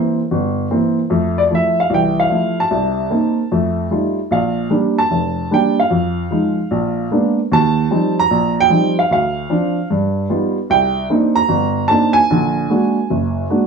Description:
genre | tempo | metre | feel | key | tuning
solo jazz | 150 BPM | 4/4 | swing 64% on 8ths | F major, Bb major from 4.3 s | A4 = 441 Hz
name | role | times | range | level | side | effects
warm upright piano | solo | 0.0-13.7 s | F1 to Bb5 | -14 LUFS | right 1 dB | none
room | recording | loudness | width
moderate club reverb, RT60 0.8 s | studio ambience | -14 LUFS | side -5 dB against mid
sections
0.0-4.3 A section; 4.3-13.7 B section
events
none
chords
0.0 C7; 1.1 Fmaj7; 2.7 Cm7; 3.5 F9; 4.3 Bb6; 5.9 Fm7; 6.7 Bb7b9; 7.5 Eb69; 9.1 Dm7; 9.9 G7b13; 10.7 Cm9; 12.3 Bbaug7

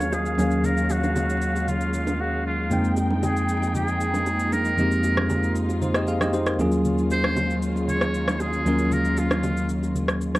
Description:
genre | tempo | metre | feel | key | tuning
amapiano | 116 BPM | 4/4 | straight | unclear | A4 = 440 Hz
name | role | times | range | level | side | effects
trumpet with metal mute | melody | 0.0-9.7 s | F4 to Db5 | -28 LUFS | right 1 dB | low-pass filter, analog delay
bell-like tine electric piano | accompaniment | 0.0-10.4 s | Eb2 to G5 | -23 LUFS | equal | fast stereo tremolo, low-pass filter
dark studio string section | sustained chords | 0.0-10.4 s | Eb3 to G5 | -30 LUFS | equal | low-pass filter
electronic shaker and rim click | drums | 0.0-10.4 s | none | -29 LUFS | equal | none
bongos and congas | percussion | 0.0-10.4 s | none | -32 LUFS | right 2 dB | none
room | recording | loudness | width
moderate studio reverb, RT60 0.6 s | vinyl crackle | -21 LUFS | side -18 dB against mid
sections
0.0-10.4 A section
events
drums muted 2.2-2.7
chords
0.0 Ebm11; 2.7 Fm11; 6.6 Ebm11

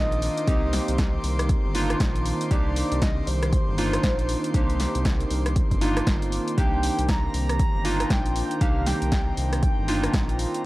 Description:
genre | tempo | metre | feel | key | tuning
deep house | 118 BPM | 4/4 | swing 60% on 16ths | C minor | A4 = 440 Hz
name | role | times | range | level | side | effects
breathy flute-like synth lead | melody | 0.0-10.4 s | C5 to Bb5 | -32 LUFS | equal | tremolo, lush chorus, tape echo
deep dark ambient pad | sustained chords | 0.0-10.7 s | Eb3 to D6 | -35 LUFS | equal | chorus, built-in reverb, sidechain pumping
warm analog keys | stabs | 0.0-10.6 s | Bb3 to G4 | -29 LUFS | right 1 dB | chorus, sidechain pumping
round analog bass | bass | 0.0-10.5 s | G1 to C2 | -27 LUFS | equal | sidechain pumping
airy breathy pad | texture | 0.1-10.7 s | Eb3 to D6 | -36 LUFS | equal | chorus, sidechain pumping
deep house drum kit | drums | 0.1-10.6 s | hi-hat, rim click, snare drum | -31 LUFS | equal | overdrive
electronic kick drum | drums | 0.5-10.3 s | none | -24 LUFS | equal | overdrive
room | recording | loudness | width
little or no reverb | dry, gritty hardware recording, transformer saturation, vinyl crackle | -21 LUFS | side -18 dB against mid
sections
0.0-10.7 A section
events
none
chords
0.0 Cm9

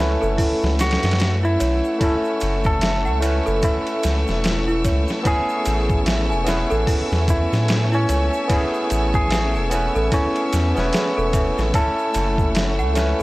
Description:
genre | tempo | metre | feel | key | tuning
trip hop | 74 BPM | 4/4 | swing 59% on 16ths | F# minor | A4 = 444 Hz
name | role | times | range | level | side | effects
barky tine electric piano | accompaniment | 0.0-13.2 s | A3 to B4 | -24 LUFS | equal | overdrive, harmonic tremolo, tape echo
warm chamber violin section | sustained chords | 0.0-13.2 s | A3 to E6 | -29 LUFS | equal | none
worn celesta | arpeggios | 0.0-13.2 s | E4 to G#5 | -26 LUFS | right 1 dB | tape echo
soft dub sub bass | bass | 0.0-13.2 s | E1 to A2 | -21 LUFS | equal | none
trip hop sampler-style drum kit | drums | 0.0-13.2 s | hi-hat, kick drum, ride cymbal, snare drum | -24 LUFS | equal | overdrive, studio reverb
egg shaker | percussion | 0.2-13.2 s | none | -40 LUFS | left 3 dB | none
clean electric guitar | melody | 0.8-12.5 s | C#4 to A4 | -26 LUFS | equal | vintage 12-bit sampler grit, tape echo
room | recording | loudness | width
little or no reverb | dry, gritty hardware recording, cassette tape | -17 LUFS | side -19 dB against mid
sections
0.0-13.2 A section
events
none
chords
0.0 F#m7; 5.3 Amaj7; 11.7 F#m7

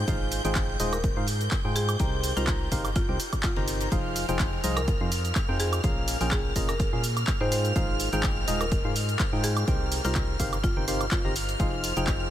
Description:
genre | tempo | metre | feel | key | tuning
piano house | 125 BPM | 4/4 | swing 54% on 16ths | F minor | A4 = 440 Hz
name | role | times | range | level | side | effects
string machine, violins | sustained chords | 0.0-12.3 s | F6 to G6 | -36 LUFS | equal | ensemble chorus, sidechain pumping
percussive organ stab | riff | 0.0-12.3 s | Bb2 to Bb5 | -31 LUFS | equal | chorus, sidechain pumping, ping-pong delay
organ-like FM bass | bass | 0.0-12.3 s | Eb1 to Bb2 | -30 LUFS | equal | sidechain pumping
damped 70s drum kit | drums | 0.1-12.3 s | ride cymbal, snare drum | -44 LUFS | left 5 dB | sidechain pumping on cymbals, high-pass filter on cymbals, high-pass filter on snare, high-pass filter on room
electronic kick drum | drums | 0.1-12.2 s | none | -28 LUFS | equal | none
punchy analog drum machine | drums | 0.1-12.2 s | handclaps, hi-hat, shaker, woodblock | -33 LUFS | right 2 dB | none
buzzing marimba with hard mallets | melody | 0.9-11.6 s | F4 to C5 | -36 LUFS | left 1 dB | ping-pong delay
room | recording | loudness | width
light reverb, small room ambience | none | -24 LUFS | side -12 dB against mid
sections
0.0-12.3 A section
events
none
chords
0.0 Fm7; 2.0 Cm7; 3.9 Fm7; 5.8 Bbm7; 7.5 Fm7; 9.7 Cm7; 11.6 Fm7

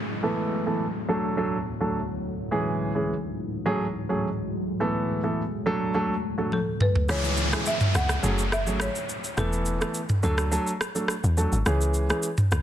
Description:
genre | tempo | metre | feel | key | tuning
afrobeats | 105 BPM | 4/4 | straight | unclear | A4 = 440 Hz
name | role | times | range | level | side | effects
deep dark ambient pad | sustained chords | 0.0-7.1 s | D2 to G#3 | -32 LUFS | left 1 dB | chorus, built-in reverb, low-pass filter
downlifter | sound effects | 0.0-2.5, 7.1-11.7 s | none | -34 LUFS | left 1 dB | none
warm concert grand piano | accompaniment | 0.2-12.3 s | E3 to A4 | -27 LUFS | right 1 dB | low-pass filter
folk marimba with medium mallets | melody | 6.5-11.3 s | A4 to F#5 | -31 LUFS | equal | none
afro-pop drum kit | drums | 6.5-12.6 s | rim click, shaker, toms | -27 LUFS | equal | overdrive, vintage 12-bit sampler grit
deep log drum bass | bass | 7.1-12.6 s | E1 to E2 | -25 LUFS | equal | none
room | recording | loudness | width
digital ambience | dense, heavily limited modern master | -24 LUFS | side -11 dB against mid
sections
0.0-7.1 A section; 7.1-12.6 B section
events
filter sweep 0.0-7.1; drum fill 6.5-7.1; kick muted 7.1-12.6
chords
0.2 Esus4; 1.1 D; 2.5 C#m; 3.7 F#madd9; 4.8 Esus4; 5.7 D; 7.1 C#m; 8.2 F#madd9; 9.4 Esus4; 10.2 D; 11.7 C#m

